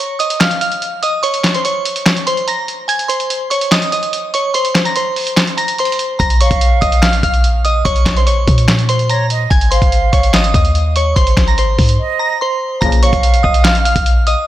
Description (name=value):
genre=hip hop, trap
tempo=145 BPM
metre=4/4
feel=half-time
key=Bb minor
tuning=A4 = 440 Hz
part: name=glassy synth bell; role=melody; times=0.0-14.4 s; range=C5 to Bb6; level=-16 LUFS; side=equal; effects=chorus, low-pass filter
part: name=lo-fi sampler-style drum kit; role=drums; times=0.2-14.4 s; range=handclaps, hi-hat, kick drum, snare drum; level=-15 LUFS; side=equal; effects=none
part: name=clean 808-style bass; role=bass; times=6.2-14.4 s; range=Ab1 to Bb2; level=-14 LUFS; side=equal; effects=none
part: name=concert flute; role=second line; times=6.4-14.0 s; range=Db5 to F5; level=-21 LUFS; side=right 4 dB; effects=digital delay
part: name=warm brass ensemble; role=stabs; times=12.8-13.1 s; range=Bb2 to F3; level=-24 LUFS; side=left 4 dB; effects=digital delay
room=little or no reverb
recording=none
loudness=-11 LUFS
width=side -14 dB against mid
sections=0.0-12.8 A section; 12.8-14.5 B section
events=break 0.0-6.2, 12.0-12.8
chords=0.0 Bbm (rootless); 2.9 Ab (rootless); 6.2 Bbm; 9.5 Ab; 12.8 Bbm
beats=0.41 0.82 | 1.23 1.65 2.06 2.47 | 2.89 3.30 3.72 4.13 | 4.54 4.96 5.37 5.79 | 6.20 6.61 7.03 7.44 | 7.85 8.27 8.68 9.10 | 9.51 9.92 10.34 10.75 | 11.16 11.58 11.99 12.40 | 12.82 13.23 13.65 14.06